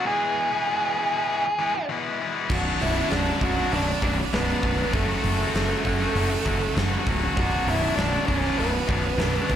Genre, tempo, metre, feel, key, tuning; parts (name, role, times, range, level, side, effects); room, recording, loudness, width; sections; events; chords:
quiet-loud alternative rock; 98 BPM; 4/4; straight; B dorian; A4 = 435 Hz
octave-fuzz lead guitar; melody; 0.0-9.6 s; A3 to G#4; -26 LUFS; right 2 dB; distortion, plate reverb
tight distorted guitar; riff; 0.0-9.6 s; B1 to F#4; -28 LUFS; left 7 dB; distortion, slapback echo
high-gain distorted guitar; riff; 2.5-9.6 s; B1 to F#3; -33 LUFS; right 2 dB
scooped high-gain guitar; riff; 2.5-9.6 s; B1 to F#4; -33 LUFS; right 14 dB; distortion
fuzz fingered electric bass; bass; 2.5-9.6 s; B0 to F#1; -27 LUFS; right 1 dB; overdrive
huge arena drum kit; drums; 2.5-9.6 s; crash cymbal, hi-hat, kick drum, snare drum; -28 LUFS; equal
light reverb; live gig heard through the venue's PA, club reverb; -21 LUFS; side -10 dB against mid
0.0-9.6 A section
0.1 E; 2.5 Bm; 4.9 F#m; 7.4 Bm